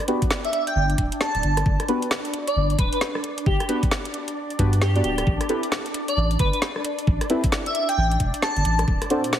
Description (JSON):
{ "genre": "UK garage, two-step garage", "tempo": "133 BPM", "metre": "4/4", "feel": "swing 62% on 16ths", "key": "G major", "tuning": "A4 = 440 Hz", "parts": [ { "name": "soft string machine", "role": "sustained chords", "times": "0.0-9.4 s", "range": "D4 to D5", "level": "-31 LUFS", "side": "left 1 dB", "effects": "phaser, ensemble chorus, sidechain pumping" }, { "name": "deep mellow chord stab", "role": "stabs", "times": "0.1-9.2 s", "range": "B3 to D5", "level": "-26 LUFS", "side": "equal", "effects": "chorus, phaser, dub echo" }, { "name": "garage drum kit", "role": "drums", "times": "0.1-9.4 s", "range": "hi-hat, rim click, snare drum", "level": "-27 LUFS", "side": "equal", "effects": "none" }, { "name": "electronic kick drum", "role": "drums", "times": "0.2-9.0 s", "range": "none", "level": "-23 LUFS", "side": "equal", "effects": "none" }, { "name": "airy dreamy lead", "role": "melody", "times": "0.4-8.8 s", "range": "G4 to A5", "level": "-26 LUFS", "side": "equal", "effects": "chorus, dub echo" }, { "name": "saturated sub bass", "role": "bass", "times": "0.8-9.0 s", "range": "D1 to G2", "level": "-22 LUFS", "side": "equal", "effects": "none" }, { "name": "riser", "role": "sound effects", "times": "9.2-9.4 s", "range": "none", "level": "-39 LUFS", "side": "equal", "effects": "none" } ], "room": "moderate lush hall reverb, RT60 1.6 s", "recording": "heavily compressed radio sound, multiband compression, vinyl crackle", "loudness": "-20 LUFS", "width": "side -10 dB against mid", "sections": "0.0-9.4 A section", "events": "riser 9.2", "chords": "0.0 Gmaj7; 5.3 Am9; 8.9 D7", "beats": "0.31 0.76 1.21 | 1.66 2.11 2.56 3.01 | 3.46 3.92 4.37 4.82 | 5.27 5.72 6.17 6.62 | 7.07 7.52 7.97 8.43 | 8.88 9.33" }